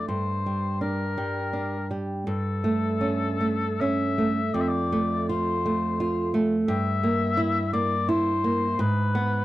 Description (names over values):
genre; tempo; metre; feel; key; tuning
romantic duo for oboe and classical guitar; 72-88 BPM; 3/4; rubato; unclear; A4 = 440 Hz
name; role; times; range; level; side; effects
mellow oboe; melody; 0.0-9.4 s; A4 to E5; -28 LUFS; left 4 dB; none
nylon-string guitar; accompaniment; 0.0-9.4 s; F2 to F4; -24 LUFS; right 1 dB; none
room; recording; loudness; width
little or no reverb; dry, close 1970s-style studio recording; -23 LUFS; side -15 dB against mid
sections
0.0-9.4 A section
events
none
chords
0.1 Gm; 2.3 A7/G; 4.5 F6; 6.7 Edim/G; 8.8 E/G# (rootless)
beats
| 0.09 0.82 1.54 | 2.27 3.00 3.80 | 4.54 5.29 6.00 | 6.68 7.37 8.09 | 8.80